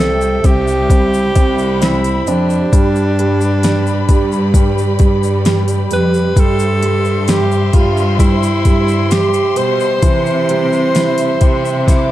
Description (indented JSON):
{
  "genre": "pop ballad",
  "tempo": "66 BPM",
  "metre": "4/4",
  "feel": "straight",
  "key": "C major",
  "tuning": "A4 = 442 Hz",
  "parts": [
    { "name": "breathy alto saxophone", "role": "melody", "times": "0.0-12.1 s", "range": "D4 to C5", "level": "-17 LUFS", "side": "equal", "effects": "none" },
    { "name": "warm baby grand piano", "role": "accompaniment", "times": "0.0-12.1 s", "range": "E3 to G4", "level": "-19 LUFS", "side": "right 5 dB", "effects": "none" },
    { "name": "warm studio string section", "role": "sustained chords", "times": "0.0-12.1 s", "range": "G4 to D6", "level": "-23 LUFS", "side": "left 2 dB", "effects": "none" },
    { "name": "rich studio cello section", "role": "bass", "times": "0.0-12.1 s", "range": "C2 to C3", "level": "-17 LUFS", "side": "left 1 dB", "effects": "none" },
    { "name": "tube shaker", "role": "percussion", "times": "0.2-12.1 s", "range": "none", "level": "-33 LUFS", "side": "left 8 dB", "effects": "none" },
    { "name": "smooth R&B drum kit", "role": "drums", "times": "0.4-12.1 s", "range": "hi-hat, kick drum, snare drum", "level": "-13 LUFS", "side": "left 1 dB", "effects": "none" }
  ],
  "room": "studio reverb",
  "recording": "dark, warm production",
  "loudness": "-11 LUFS",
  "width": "side -14 dB against mid",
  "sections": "0.0-12.1 A section",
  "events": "drum fill 11.9; grand piano fill 11.9",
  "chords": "0.0 C; 2.7 G; 6.4 C/G; 10.0 C",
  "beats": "0.90 1.82 | 2.73 3.63 4.54 5.45 | 6.36 7.28 8.19 9.11 | 10.03 10.95 11.88"
}